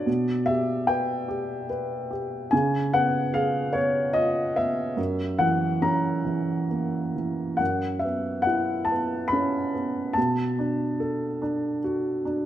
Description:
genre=classical, lyrical solo piano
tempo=72 BPM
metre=3/4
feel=rubato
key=unclear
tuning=A4 = 443 Hz
part: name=dark upright piano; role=solo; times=0.0-12.5 s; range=F#2 to B5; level=-23 LUFS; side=equal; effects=none
room=moderate recital hall reverb, RT60 1.7 s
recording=none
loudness=-23 LUFS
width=side -12 dB against mid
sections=0.0-12.5 A section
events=none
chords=0.1 G6/B; 2.5 C#7; 5.0 F#7; 7.6 F#7sus4; 10.2 Bm7

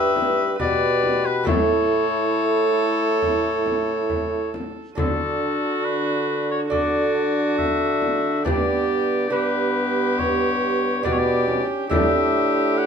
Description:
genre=classical, renaissance-style consort dance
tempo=69 BPM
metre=4/4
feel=straight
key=D major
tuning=A4 = 440 Hz
part: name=clear oboe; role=melody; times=0.0-12.9 s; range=A4 to F#5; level=-24 LUFS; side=left 8 dB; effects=none
part: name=warm viola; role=second line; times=0.0-12.9 s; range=F#4 to B4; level=-26 LUFS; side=right 6 dB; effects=none
part: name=clear trombone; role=accompaniment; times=0.0-12.9 s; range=B3 to G4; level=-26 LUFS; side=left 2 dB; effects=none
part: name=lute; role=accompaniment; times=0.0-12.9 s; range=G2 to B4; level=-29 LUFS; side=right 4 dB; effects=none
part: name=mellow bassoon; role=bass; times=0.0-12.9 s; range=G2 to D3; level=-24 LUFS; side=right 2 dB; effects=none
part: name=frame drum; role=percussion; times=0.2-12.3 s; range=none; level=-28 LUFS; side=left 2 dB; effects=none
room=light reverb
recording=minimal, uncompressed stereo recording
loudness=-19 LUFS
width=side -6 dB against mid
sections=0.0-5.0 A section; 5.0-12.9 B section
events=none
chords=0.0 G; 1.5 A; 5.0 D; 8.5 G; 11.9 A7sus4

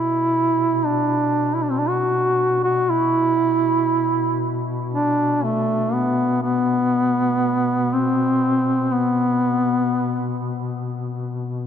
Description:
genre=caucasian folk, Caucasian lament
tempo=59 BPM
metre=3/4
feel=rubato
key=B phrygian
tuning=A4 = 440 Hz
part: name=warm duduk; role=melody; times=0.0-10.5 s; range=A3 to F#4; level=-19 LUFS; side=equal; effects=none
part: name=mellow duduk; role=drone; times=0.0-11.7 s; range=B2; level=-27 LUFS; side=left 4 dB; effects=none
room=moderate cathedral reverb, RT60 5.9 s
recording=dark, warm production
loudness=-18 LUFS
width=side -8 dB against mid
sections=0.0-11.7 A section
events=none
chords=none

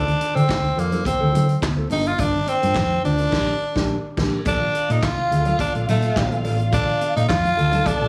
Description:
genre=disco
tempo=106 BPM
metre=4/4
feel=straight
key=unclear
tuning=A4 = 440 Hz
part: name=raspy tenor saxophone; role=melody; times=0.0-8.1 s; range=A3 to F4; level=-24 LUFS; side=equal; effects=none
part: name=mellow electric guitar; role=accompaniment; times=0.0-8.1 s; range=D4 to F5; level=-32 LUFS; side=equal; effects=spring reverb
part: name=hollow-body short-scale fingered electric bass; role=bass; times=0.0-8.1 s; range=G1 to D3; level=-24 LUFS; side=equal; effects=none
part: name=vintage drum kit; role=drums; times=0.1-8.0 s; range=crash cymbal, handclaps, hi-hat, kick drum, snare drum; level=-29 LUFS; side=equal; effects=none
part: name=congas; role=percussion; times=0.5-8.0 s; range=none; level=-33 LUFS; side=equal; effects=none
part: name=dark studio string section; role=second line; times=4.5-8.1 s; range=F4 to A5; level=-31 LUFS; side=equal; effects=none
room=light reverb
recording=studio ambience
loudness=-20 LUFS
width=mono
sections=0.0-4.5 A section; 4.5-8.1 B section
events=band accent 3.3-4.5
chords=0.0 Dm7; 1.9 Gm7; 3.3 Bb6; 4.5 Bbmaj7

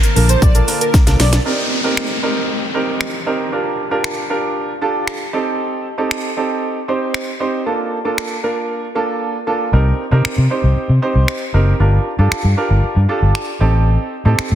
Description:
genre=dance-pop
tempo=116 BPM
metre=4/4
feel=straight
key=unclear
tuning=A4 = 441 Hz
part: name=airy dreamy lead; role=melody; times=0.0-1.3 s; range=Bb4 to D5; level=-22 LUFS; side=right 1 dB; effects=chorus, sidechain pumping, digital delay
part: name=string machine, cellos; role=sustained chords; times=0.0-1.4 s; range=D3 to A5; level=-27 LUFS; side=left 1 dB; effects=ensemble chorus, sidechain pumping
part: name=house drum kit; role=drums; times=0.0-14.5 s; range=finger snaps, hi-hat, kick drum, shaker, snare drum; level=-19 LUFS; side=equal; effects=soft clipping on snare
part: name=warm baby grand piano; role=accompaniment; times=0.2-14.6 s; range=Bb3 to C5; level=-19 LUFS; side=right 2 dB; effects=sidechain pumping
part: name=vintage muted fingered electric bass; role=bass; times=0.2-1.4, 9.7-14.6 s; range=F#1 to C3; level=-12 LUFS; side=equal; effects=sidechain pumping
part: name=downlifter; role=sound effects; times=1.5-5.6 s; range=none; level=-23 LUFS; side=left 1 dB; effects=none
room=light reverb, digital ambience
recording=dense, heavily limited modern master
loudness=-14 LUFS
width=side -11 dB against mid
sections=0.0-1.5 A section; 1.5-14.6 B section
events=drop 0.0-1.5; drum fill 0.9-1.5; silent gap 9.2-9.7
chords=0.0 Bbmaj7; 1.5 Cm7; 3.5 Gm7; 5.3 Am7b5; 7.7 Bbmaj7; 9.7 Cm7; 11.8 Gm7; 13.6 Am7b5

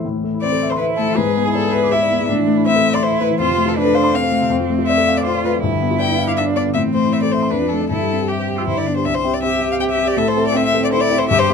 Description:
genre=quick classical-period movement for piano trio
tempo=161 BPM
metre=3/4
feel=straight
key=A minor, C major from 4.5 s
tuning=A4 = 440 Hz
part: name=warm grand piano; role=accompaniment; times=0.0-11.5 s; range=C2 to E6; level=-18 LUFS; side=left 3 dB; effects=none
part: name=rich violin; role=melody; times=0.4-11.5 s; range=G4 to G5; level=-19 LUFS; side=left 6 dB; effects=none
part: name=rich cello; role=second line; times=0.4-11.5 s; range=C4 to A4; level=-21 LUFS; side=right 7 dB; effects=none
room=light reverb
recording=dark, warm production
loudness=-15 LUFS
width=side -6 dB against mid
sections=0.0-9.1 A section; 9.1-11.5 B section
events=none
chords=0.0 Am; 1.2 E7/G#; 2.3 Am; 3.4 F; 4.5 Dm/F; 5.6 G7; 6.7 Am; 7.5 Dm/F; 7.9 C/G; 8.7 G; 9.1 C; 10.2 Am

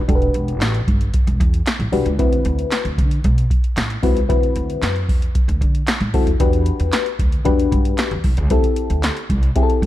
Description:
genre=early-eighties boogie funk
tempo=114 BPM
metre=4/4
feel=straight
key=E minor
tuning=A4 = 439 Hz
part: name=mellow FM electric piano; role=accompaniment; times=0.1-9.9 s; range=C4 to B4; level=-21 LUFS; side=left 4 dB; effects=chorus, phaser
part: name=upright bass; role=bass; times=0.1-9.9 s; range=E1 to D3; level=-21 LUFS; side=equal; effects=none
part: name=electro analog drum machine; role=drums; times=0.1-9.9 s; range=handclaps, hi-hat, kick drum, snare drum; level=-18 LUFS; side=equal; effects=none
room=little or no reverb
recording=dark, warm production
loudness=-16 LUFS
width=side -14 dB against mid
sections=0.0-6.4 A section; 6.4-9.9 B section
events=none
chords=0.0 Em7; 2.2 D13; 6.4 Em9; 8.5 D9sus4

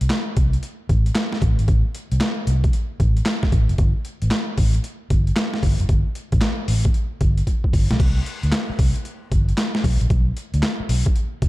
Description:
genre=R&B, new jack swing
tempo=114 BPM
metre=4/4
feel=swing 65% on 16ths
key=unclear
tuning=A4 = 438 Hz
part: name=vintage muted fingered electric bass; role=bass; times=0.0-11.5 s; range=F#1 to D2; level=-20 LUFS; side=equal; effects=none
part: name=boom bap sampler-style drum kit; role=drums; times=0.0-11.5 s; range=crash cymbal, handclaps, hi-hat, kick drum, snare drum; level=-20 LUFS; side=equal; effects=overdrive
room=little or no reverb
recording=dark, warm production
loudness=-18 LUFS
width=side -18 dB against mid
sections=0.0-8.0 A section; 8.0-11.5 B section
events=drum fill 7.5-8.0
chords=none

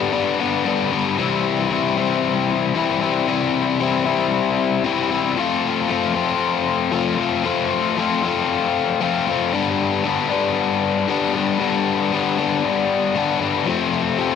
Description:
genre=rock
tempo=115 BPM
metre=4/4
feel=straight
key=C major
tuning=A4 = 440 Hz
part: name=biting overdriven guitar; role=solo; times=0.0-14.4 s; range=F2 to F4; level=-18 LUFS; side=left 6 dB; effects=none
room=light reverb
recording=none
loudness=-18 LUFS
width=side -6 dB against mid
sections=0.0-1.2 A section; 1.2-14.4 B section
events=none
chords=0.0 G; 1.2 C; 5.4 F; 9.5 G; 13.7 F

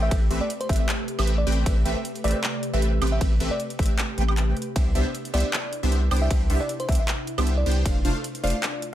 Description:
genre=future bass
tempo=155 BPM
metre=4/4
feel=swing 55% on 16ths, half-time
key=A minor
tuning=A4 = 440 Hz
part: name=bell-like FM electric piano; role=melody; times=0.0-8.8 s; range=C5 to E5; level=-32 LUFS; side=left 1 dB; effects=chorus, sidechain pumping, digital delay
part: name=ethereal airy pad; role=sustained chords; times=0.0-8.9 s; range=C3 to B4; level=-34 LUFS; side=right 1 dB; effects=ensemble chorus, built-in reverb, sidechain pumping
part: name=supersaw stab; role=riff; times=0.0-8.6 s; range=A3 to G5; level=-29 LUFS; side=right 1 dB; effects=phaser, sidechain pumping
part: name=saturated sub bass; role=bass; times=0.0-8.5 s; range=F1 to C2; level=-23 LUFS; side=equal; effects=sidechain pumping
part: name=big-room dance drum kit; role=drums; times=0.1-8.9 s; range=handclaps, hi-hat, ride cymbal, woodblock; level=-31 LUFS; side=right 1 dB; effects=overdrive
part: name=electronic kick drum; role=drums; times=0.1-7.9 s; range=none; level=-24 LUFS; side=equal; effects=overdrive
room=digital ambience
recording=faint mains hum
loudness=-21 LUFS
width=side -12 dB against mid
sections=0.0-8.9 A section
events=none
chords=0.0 Am9; 4.6 Cmaj9; 7.9 F6

